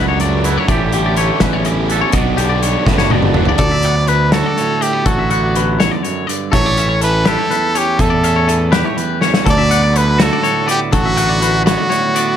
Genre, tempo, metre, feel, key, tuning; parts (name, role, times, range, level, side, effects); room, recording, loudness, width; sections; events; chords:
math rock and midwest emo; 82 BPM (dotted quarters); 6/8; straight; A4 = 440 Hz
twangy electric guitar; accompaniment; 0.0-12.4 s; D2 to A4; -20 LUFS; right 7 dB
twangy electric guitar; arpeggios; 0.0-12.4 s; G4 to F#5; -20 LUFS; left 9 dB
overdriven electric guitar; riff; 0.0-3.6 s; A2 to F#4; -20 LUFS; right 1 dB
fuzz fingered electric bass; bass; 0.0-11.8 s; F#1 to E2; -17 LUFS; equal; overdrive
loose indie drum kit; drums; 0.2-12.3 s; hi-hat, kick drum, snare drum, toms; -18 LUFS; equal
brilliant trumpet; melody; 3.6-12.4 s; F#4 to D5; -17 LUFS; equal
light reverb; -12 LUFS; side -9 dB against mid
0.0-3.6 A section; 3.6-12.4 B section
drum fill 2.9-3.6, 9.2
0.0 Dmaj9; 0.7 A7sus4; 2.1 Gmaj7/B; 3.6 A7; 9.5 D6